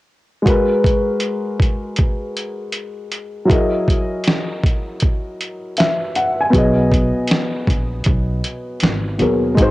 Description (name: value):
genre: lo-fi hip hop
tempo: 79 BPM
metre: 4/4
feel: swing 64% on 16ths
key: G# minor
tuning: A4 = 440 Hz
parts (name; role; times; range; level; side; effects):
- dark upright piano; accompaniment; 0.4-9.7 s; B2 to G#5; -19 LUFS; left 1 dB; cassette tape, low-pass filter
- dusty soul sampler-style drum kit; drums; 0.5-9.7 s; hi-hat, kick drum, snare drum; -17 LUFS; equal; overdrive, cassette tape
- upright bass; bass; 6.5-9.7 s; G#1 to D#2; -21 LUFS; equal; none
room: moderate spring reverb, RT60 2.6 s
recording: home recording on cassette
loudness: -16 LUFS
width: side -18 dB against mid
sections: 0.5-9.7 A section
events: none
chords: 0.5 G#m9; 3.5 F#13; 6.5 B6